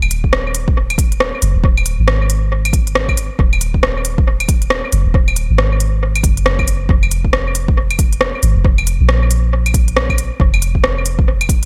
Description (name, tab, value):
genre	future garage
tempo	137 BPM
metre	4/4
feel	swing 61% on 16ths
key	Eb minor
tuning	A4 = 438 Hz
part	soft 808-style bass	bass	0.0-11.7 s	Eb1 to Bb1	-19 LUFS	equal	tube saturation, sidechain pumping
part	organic electronic drum kit	drums	0.0-11.7 s	cabasa, claves, hi-hat, rim click	-21 LUFS	equal	overdrive, dub echo
part	electronic kick drum	drums	0.2-11.6 s	none	-17 LUFS	equal	overdrive
room	little or no reverb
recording	echo-heavy mix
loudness	-15 LUFS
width	mono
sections	0.0-11.7 A section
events	none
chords	none